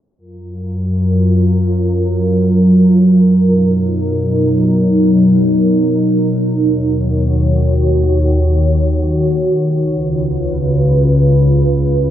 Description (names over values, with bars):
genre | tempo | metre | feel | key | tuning
hip hop | free time | none | none | F# major | A4 = 439 Hz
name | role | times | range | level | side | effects
glassy FM pad | sustained chords | 0.6-12.1 s | C#2 to C#5 | -11 LUFS | equal | ensemble chorus, built-in reverb
room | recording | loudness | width
moderate huge ambient reverb, RT60 8.0 s | low-pass filter | -11 LUFS | side -11 dB against mid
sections
0.2-12.1 A section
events
filter sweep 0.2-12.1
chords
0.2 F#maj7; 3.4 Bmaj7; 6.6 D#m7; 9.8 C#7